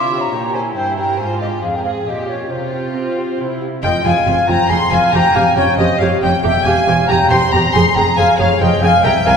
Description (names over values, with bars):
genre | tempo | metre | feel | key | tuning
classical, baroque-style concerto movement with solo episodes | 138 BPM | 3/4 | straight | F minor | A4 = 440 Hz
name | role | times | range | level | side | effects
mellow wooden flute | melody | 0.0-9.4 s | C5 to C6 | -17 LUFS | left 1 dB | none
rich chamber violin section | melody | 0.0-9.4 s | E4 to C6 | -22 LUFS | left 4 dB | none
rich chamber violin section | second line | 0.0-9.4 s | F4 to C6 | -20 LUFS | left 2 dB | none
lute | accompaniment | 0.0-9.4 s | E2 to Db5 | -25 LUFS | right 1 dB | none
warm chamber viola section | accompaniment | 0.0-9.3 s | E4 to Bb4 | -23 LUFS | equal | none
warm chamber cello section | bass | 0.0-9.3 s | C2 to C4 | -21 LUFS | right 2 dB | none
dark studio double bass section | bass | 3.8-9.3 s | E1 to C2 | -21 LUFS | right 3 dB | none
room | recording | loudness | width
wet concert hall reverb, RT60 1.8 s | minimal, uncompressed stereo recording | -13 LUFS | side -6 dB against mid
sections
0.0-3.8 A section; 3.8-9.4 B section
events
none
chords
0.0 C; 1.2 Fm/Ab; 2.1 Gdim/Bb; 2.5 Csus4; 3.4 C; 3.8 Fm; 5.1 Eb9/F; 6.4 C/E; 7.7 Fm